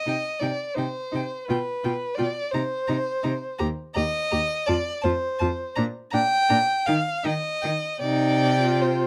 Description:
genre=classical, slow romantic movement for string quartet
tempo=49-59 BPM (dotted quarters)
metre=6/8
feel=rubato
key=unclear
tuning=A4 = 439 Hz
part: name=warm violin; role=second line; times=0.0-9.1 s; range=B4 to G5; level=-28 LUFS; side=equal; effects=none
part: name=rich violin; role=melody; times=0.1-9.1 s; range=G5 to Bb5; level=-33 LUFS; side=equal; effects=none
part: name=warm viola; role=accompaniment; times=0.1-9.1 s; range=D4 to G4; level=-31 LUFS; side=equal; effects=none
part: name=rich cello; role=bass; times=0.1-9.1 s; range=Eb2 to Eb3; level=-30 LUFS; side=equal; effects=none
room=light reverb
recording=none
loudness=-25 LUFS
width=mono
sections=0.0-9.1 A section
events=none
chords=0.0 Cm; 1.5 G7/B; 2.5 Cm7; 3.6 Eb; 4.7 F5; 5.8 Bb; 6.9 N.C.; 8.0 Cm

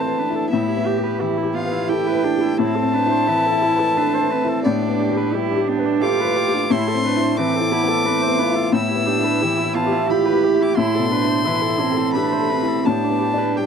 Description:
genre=neoclassical piano and strings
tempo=88 BPM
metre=3/4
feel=rubato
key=A minor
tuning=A4 = 441 Hz
part: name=warm violin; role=melody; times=0.0-13.7 s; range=D5 to E6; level=-23 LUFS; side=left 3 dB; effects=none
part: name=warm cello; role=second line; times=0.0-13.7 s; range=B3 to G4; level=-23 LUFS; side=right 9 dB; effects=none
part: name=felt-muted upright piano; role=accompaniment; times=0.0-13.7 s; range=A2 to B4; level=-21 LUFS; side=left 7 dB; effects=none
part: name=warm viola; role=accompaniment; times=0.0-13.7 s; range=B3 to C5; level=-27 LUFS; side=right 5 dB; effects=none
part: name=concert harp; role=arpeggios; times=0.0-13.7 s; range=E4 to C6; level=-27 LUFS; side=right 15 dB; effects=slapback echo
room=light reverb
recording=dry, close 1970s-style studio recording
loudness=-17 LUFS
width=side -7 dB against mid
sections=0.0-13.7 A section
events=none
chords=0.0 Amadd9; 0.5 Em/A; 2.6 Amadd9; 4.6 G/A; 6.7 Amadd9; 8.7 Em/A; 10.8 Amadd9; 12.9 G/A

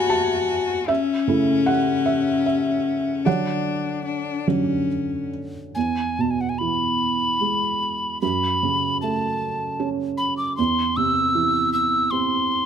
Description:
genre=celtic folk, Celtic slow air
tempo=74 BPM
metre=3/4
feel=uneven beats, rubato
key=E mixolydian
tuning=A4 = 440 Hz
part: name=rich cello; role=second line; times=0.0-5.3 s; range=C#4 to F#4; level=-22 LUFS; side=left 6 dB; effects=none
part: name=felt-muted upright piano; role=accompaniment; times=0.0-12.7 s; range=E2 to B5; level=-24 LUFS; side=right 4 dB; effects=none
part: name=mellow hollow tin whistle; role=melody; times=5.7-12.7 s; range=F#5 to E6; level=-22 LUFS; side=left 1 dB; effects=none
room=light reverb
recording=close, detailed microphones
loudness=-20 LUFS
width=side -8 dB against mid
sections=0.0-5.8 A section; 5.8-12.7 B section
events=felt piano solo 0.0-5.8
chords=0.0 Bm7; 0.9 A6/C#; 3.3 Dmaj7; 5.8 E; 8.2 F#m; 10.6 C/E

